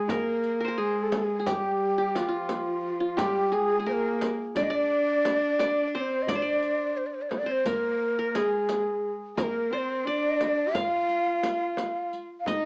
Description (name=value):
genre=Turkish makam ensemble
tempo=174 BPM (eighths)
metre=9/8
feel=straight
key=unclear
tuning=A4 = 440 Hz
part: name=breathy mellow ney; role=melody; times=0.0-12.7 s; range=F4 to F5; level=-30 LUFS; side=equal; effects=cassette tape, plate reverb
part: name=qanun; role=second line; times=0.0-12.7 s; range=F4 to F5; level=-33 LUFS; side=equal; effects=cassette tape, plate reverb
part: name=warm cello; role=second line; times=0.0-12.7 s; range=F3 to G4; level=-35 LUFS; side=equal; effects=cassette tape
part: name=darbuka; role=percussion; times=0.1-12.6 s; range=none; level=-51 LUFS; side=equal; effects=none
part: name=frame drum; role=percussion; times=0.1-12.6 s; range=none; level=-36 LUFS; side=equal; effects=none
part: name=riq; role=percussion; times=0.1-12.6 s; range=none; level=-42 LUFS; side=equal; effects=none
room=moderate small room reverb, RT60 0.5 s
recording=home recording on cassette, small speaker sound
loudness=-27 LUFS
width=mono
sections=0.1-12.7 A section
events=none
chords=none